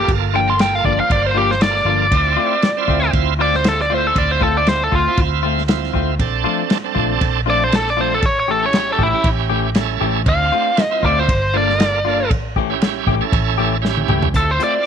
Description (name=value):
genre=straight-eighth soul blues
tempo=118 BPM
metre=4/4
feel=swing 56% on 16ths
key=D minor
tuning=A4 = 440 Hz
part: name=biting lead guitar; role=melody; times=0.0-14.9 s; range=E4 to C6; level=-17 LUFS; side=equal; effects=overdrive
part: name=bright tonewheel organ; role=accompaniment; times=0.0-14.9 s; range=Bb3 to C5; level=-22 LUFS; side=right 14 dB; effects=slow rotary speaker, overdrive
part: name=vintage muted fingered electric bass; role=bass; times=0.0-14.6 s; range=G1 to D2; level=-22 LUFS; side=equal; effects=none
part: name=warm soul drum kit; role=drums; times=0.1-14.7 s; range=hi-hat, kick drum, ride cymbal, snare drum, toms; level=-21 LUFS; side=equal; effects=none
part: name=clean electric guitar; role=stabs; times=0.3-14.8 s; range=E3 to G4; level=-24 LUFS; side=left 13 dB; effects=none
room=light reverb, small room reverb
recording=1960s-style stereo with parts hard left and right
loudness=-14 LUFS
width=side -8 dB against mid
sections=0.0-14.3 A section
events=lead electric guitar solo 0.0-14.3; drum fill 13.8-14.3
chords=0.0 Gm7; 2.1 Dm7; 6.2 Bbmaj7; 8.2 A7; 10.3 Dm7; 11.3 Gm7; 12.3 A7; 14.3 Dm7